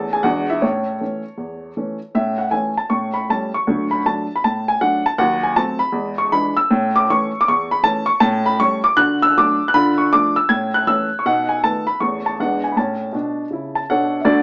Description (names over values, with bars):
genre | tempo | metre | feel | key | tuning
jazz, stride piano | 158 BPM | 4/4 | swing 66% on 8ths | A major | A4 = 440 Hz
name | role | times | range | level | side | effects
warm upright piano | solo | 0.0-14.4 s | D2 to G#6 | -16 LUFS | equal | none
room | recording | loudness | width
moderate club reverb, RT60 0.7 s | small speaker sound | -15 LUFS | side -32 dB against mid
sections
0.0-2.1 A section; 2.1-14.3 A section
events
none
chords
0.3 E7; 0.6 A; 2.9 A7; 3.7 D; 5.2 D#dim7; 5.9 E7; 6.7 A; 8.2 A7; 9.0 D; 9.7 Dm; 10.5 A; 11.2 B7; 12.0 A/E; 12.4 E7; 12.8 A